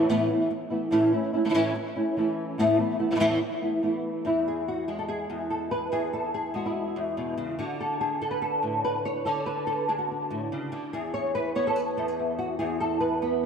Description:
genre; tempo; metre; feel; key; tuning
flamenco; 144 BPM; 4/4; straight; unclear; A4 = 438 Hz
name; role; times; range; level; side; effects
flamenco guitar; solo; 0.0-13.5 s; E2 to C#5; -25 LUFS; equal; ensemble chorus, diffuse ambient delay
room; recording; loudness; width
wet lush hall reverb, RT60 2.5 s; dreamy mix soaked in reverb; -25 LUFS; side -6 dB against mid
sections
0.0-4.2 A section; 4.2-13.5 B section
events
none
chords
0.0 Esus4; 0.9 A; 2.6 Esus4; 4.2 E; 7.6 D; 10.9 E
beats
0.09 0.50 | 0.92 1.33 1.75 2.17 | 2.58 3.00 3.42 3.83 | 4.25 4.67 5.08 5.50 | 5.92 6.33 6.75 7.17 | 7.59 8.00 8.42 8.84 | 9.26 9.67 10.09 10.51 | 10.93 11.34 11.76 12.18 | 12.59 13.01 13.43

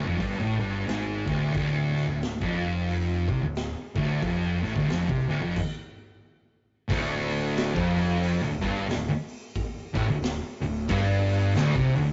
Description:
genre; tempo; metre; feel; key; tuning
stoner and doom metal; 90 BPM; 4/4; swing 60% on 8ths; D minor; A4 = 439 Hz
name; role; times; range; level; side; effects
thick fuzz guitar; riff; 0.0-12.1 s; D2 to C3; -30 LUFS; equal; distortion
thick fuzz guitar; riff; 0.0-12.1 s; D2 to C3; -31 LUFS; equal; distortion
fuzz picked electric bass; bass; 0.0-12.1 s; D1 to C2; -38 LUFS; equal; overdrive
raw garage drum kit; drums; 0.2-12.1 s; crash cymbal, hi-hat, kick drum, snare drum; -36 LUFS; equal; none
fuzz guitar; riff; 6.9-12.1 s; D2 to C3; -34 LUFS; equal; distortion
room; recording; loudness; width
moderate booth ambience, RT60 0.2 s; rough rehearsal-room recording, tube saturation, nothing above 7.7 kHz; -27 LUFS; mono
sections
0.0-6.9 A section; 6.9-12.1 B section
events
stop 5.6-6.9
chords
0.0 Dm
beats
0.20 0.87 | 1.54 2.22 2.89 3.56 | 4.23 4.90 5.57 6.23 | 6.90 7.57 8.23 8.90 | 9.57 10.23 10.90 11.56

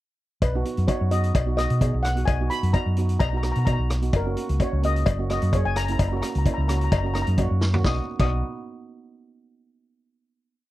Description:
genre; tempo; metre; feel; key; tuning
calypso; 129 BPM; 4/4; straight; B major; A4 = 439 Hz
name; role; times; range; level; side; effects
steel pan; melody; 0.4-8.4 s; A#4 to D#6; -30 LUFS; left 3 dB; none
hollow-body short-scale fingered electric bass; bass; 0.4-8.4 s; F#1 to B2; -23 LUFS; equal; none
vintage drum kit; drums; 0.4-8.3 s; crash cymbal, hi-hat, kick drum, rim click, snare drum, toms; -25 LUFS; equal; none
cowbell; percussion; 0.4-8.4 s; none; -31 LUFS; left 8 dB; none
steel pan; accompaniment; 0.6-8.4 s; A#3 to G#4; -31 LUFS; right 6 dB; none
room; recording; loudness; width
little or no reverb; dry, close 1970s-style studio recording; -21 LUFS; side -16 dB against mid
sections
0.4-7.8 verse; 7.8-9.7 final chord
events
drum fill 7.6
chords
0.4 Bmaj7; 4.1 F#; 7.8 B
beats
| 0.42 0.89 1.35 1.81 | 2.28 2.75 3.21 3.67 | 4.14 4.60 5.07 5.53 | 6.00 6.46 6.92 7.38 | 7.85 8.31

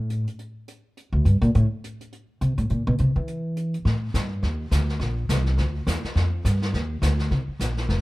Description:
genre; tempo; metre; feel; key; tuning
jazz, small-group swing and bop; 208 BPM; 4/4; swing 59% on 8ths; unclear; A4 = 440 Hz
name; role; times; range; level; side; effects
upright bass; bass; 0.0-8.0 s; F1 to E3; -22 LUFS; equal; none
jazz brush drum kit; drums; 0.1-8.0 s; brushed snare drum, hi-hat, kick drum, snare drum; -30 LUFS; left 1 dB; none
room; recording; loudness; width
little or no reverb; dark, warm production; -22 LUFS; side -20 dB against mid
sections
0.0-3.8 A section; 3.8-8.0 B section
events
upright bass solo 0.0-3.8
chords
none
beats
0.10 | 0.39 0.67 0.96 1.25 | 1.54 1.83 2.12 2.41 | 2.69 2.98 3.27 3.56 | 3.85 4.14 4.43 4.71 | 5.00 5.29 5.58 5.87 | 6.16 6.45 6.74 7.03 | 7.31 7.60 7.89

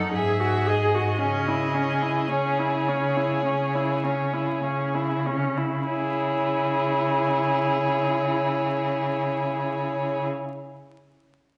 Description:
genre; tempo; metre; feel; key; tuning
classical, slow romantic movement for string quartet; 46-57 BPM; 4/4; rubato; C# minor; A4 = 440 Hz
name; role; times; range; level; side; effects
warm violin; melody; 0.0-10.2 s; C#5 to F#5; -32 LUFS; equal; none
warm violin; second line; 0.0-10.3 s; G#4 to A4; -31 LUFS; equal; none
warm viola; accompaniment; 0.0-10.3 s; C#4 to G#4; -29 LUFS; equal; none
rich cello; bass; 0.0-10.3 s; G#2 to C#3; -31 LUFS; equal; none
room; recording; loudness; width
wet recital hall reverb, RT60 1.4 s; vinyl crackle, nothing above 11.0 kHz; -25 LUFS; mono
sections
0.0-5.9 A section; 5.9-10.8 B section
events
slowing down 0.0-5.9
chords
0.1 G#5; 1.2 C#m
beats
0.14 | 1.21 2.30 3.44 4.62 | 5.87 7.10 8.34 9.55

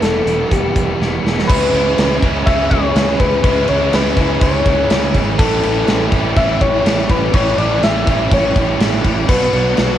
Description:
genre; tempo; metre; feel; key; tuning
rock, shoegaze and dream pop; 123 BPM; 4/4; straight; unclear; A4 = 443 Hz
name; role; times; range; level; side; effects
soft struck synth lead; melody; 0.0-10.0 s; G4 to E5; -18 LUFS; left 2 dB; chorus, cassette tape, tape echo
biting overdriven guitar; riff; 0.0-10.0 s; E2 to G4; -24 LUFS; left 11 dB; wide subtle chorus, cassette tape
overdriven electric guitar; riff; 0.0-10.0 s; E2 to F#4; -21 LUFS; right 8 dB; reverse reverb, cassette tape
fuzz fingered electric bass; bass; 0.0-10.0 s; E1 to C#2; -21 LUFS; equal; overdrive
big rock drum kit; drums; 0.0-9.9 s; crash cymbal, hi-hat, kick drum, snare drum; -18 LUFS; equal; cassette tape
overdriven electric guitar; riff; 1.5-10.0 s; A2 to C#4; -23 LUFS; equal; cassette tape
room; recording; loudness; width
little or no reverb; home recording on cassette; -12 LUFS; side -11 dB against mid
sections
0.0-1.5 A section; 1.5-10.0 B section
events
drum fill 1.0-1.5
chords
0.0 Em; 1.5 C#m7; 5.4 A7; 9.3 Bm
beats
0.02 0.51 1.00 | 1.49 1.98 2.46 2.95 | 3.44 3.93 4.42 4.90 | 5.39 5.88 6.37 6.85 | 7.34 7.83 8.31 8.80 | 9.29 9.77

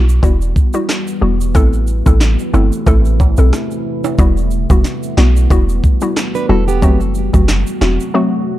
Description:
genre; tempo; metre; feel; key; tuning
dancehall; 91 BPM; 4/4; swing 56% on 16ths; E minor; A4 = 440 Hz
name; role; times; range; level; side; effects
hollow square pluck; accompaniment; 0.0-8.6 s; F#3 to A4; -18 LUFS; left 2 dB; chorus
deep dark ambient pad; sustained chords; 0.1-8.6 s; C3 to F#4; -22 LUFS; equal; chorus, built-in reverb, sidechain pumping
clean 808-style bass; bass; 0.0-8.0 s; E1 to B1; -13 LUFS; equal; none
tube shaker and timbales; percussion; 0.1-8.1 s; none; -27 LUFS; right 8 dB; none
afro-pop drum kit; drums; 0.2-8.0 s; handclaps, hi-hat, kick drum, rim click, snare drum; -13 LUFS; equal; none
nylon-string guitar; arpeggios; 6.3-7.0 s; B3 to B4; -22 LUFS; right 6 dB; tape echo
room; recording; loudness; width
digital ambience; dark, warm production; -11 LUFS; side -14 dB against mid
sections
0.0-8.6 A section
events
none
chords
0.0 Emadd9; 1.6 Am; 4.2 Emadd9; 6.8 F#dim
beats
0.23 0.89 | 1.55 2.21 2.87 3.53 | 4.19 4.85 5.51 6.17 | 6.82 7.48 8.14

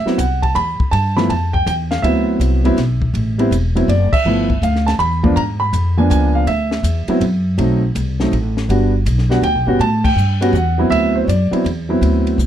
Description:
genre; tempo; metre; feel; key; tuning
jazz piano trio; 162 BPM; 3/4; swing 65% on 8ths; D mixolydian; A4 = 440 Hz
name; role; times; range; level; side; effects
warm grand piano; melody; 0.0-12.4 s; F3 to B5; -17 LUFS; right 1 dB; none
upright bass; bass; 0.0-12.5 s; E1 to A2; -16 LUFS; equal; none
compact cocktail drum kit; drums; 0.1-12.5 s; crash cymbal, hi-hat, kick drum, ride cymbal, snare drum; -24 LUFS; left 2 dB; none
room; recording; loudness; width
light reverb; dark, warm production; -14 LUFS; side -10 dB against mid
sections
0.0-12.5 A section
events
band accent 4.1, 10.0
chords
0.0 D13 (rootless); 0.9 G13; 2.0 D13; 3.1 Am; 3.9 Dadd9; 4.3 G13; 5.4 G#dim7; 6.5 Dadd9; 7.6 B7b9; 8.7 Gmaj7; 9.8 A7sus2; 10.9 D13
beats
0.19 0.56 | 0.93 1.29 1.67 | 2.04 2.40 2.77 | 3.14 3.51 3.88 | 4.25 4.62 4.99 | 5.36 5.74 6.11 | 6.47 6.84 7.21 | 7.58 7.96 8.32 | 8.69 9.06 9.43 | 9.80 10.17 10.54 | 10.91 11.28 11.65 | 12.02 12.39

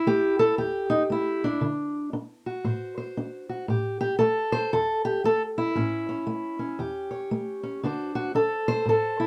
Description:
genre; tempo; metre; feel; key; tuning
acoustic country blues, solo or duo; 116 BPM; 4/4; swing 60% on 8ths; A mixolydian; A4 = 440 Hz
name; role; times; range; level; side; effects
fingerpicked steel-string acoustic guitar; solo; 0.0-9.3 s; E2 to C#5; -26 LUFS; equal; none
room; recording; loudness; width
wet booth ambience, RT60 0.2 s; none; -27 LUFS; mono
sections
0.0-9.3 A section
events
none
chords
0.0 A7(no3); 1.6 D7; 3.7 A7; 7.8 D7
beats
0.07 0.59 1.11 | 1.62 2.14 2.66 3.17 | 3.69 4.21 4.73 5.25 | 5.76 6.28 6.80 7.32 | 7.83 8.35 8.87

